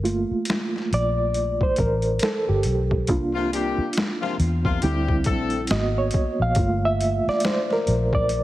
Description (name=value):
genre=R&B, neo-soul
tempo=69 BPM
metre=4/4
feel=swing 60% on 16ths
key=G dorian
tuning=A4 = 440 Hz
part: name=reed electric piano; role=accompaniment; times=0.0-8.4 s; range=G3 to F5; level=-23 LUFS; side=right 1 dB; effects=fast tremolo
part: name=vintage muted fingered electric bass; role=bass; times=0.0-8.4 s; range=G1 to E2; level=-24 LUFS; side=equal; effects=none
part: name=boom bap sampler-style drum kit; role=drums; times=0.1-8.4 s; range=hi-hat, kick drum, snare drum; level=-26 LUFS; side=equal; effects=overdrive
part: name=warm horn section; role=stabs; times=3.3-5.6 s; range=C3 to A4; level=-28 LUFS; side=left 6 dB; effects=none
room=light reverb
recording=heavily compressed radio sound, multiband compression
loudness=-20 LUFS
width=side -15 dB against mid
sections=0.0-8.4 A section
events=reed electric piano solo 0.0-8.4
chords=0.0 Gm9; 3.1 C7sus4; 4.8 D7sus4; 5.7 Abm9; 6.6 Gm9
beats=0.48 1.35 2.22 | 3.08 3.96 4.82 5.69 | 6.56 7.43 8.30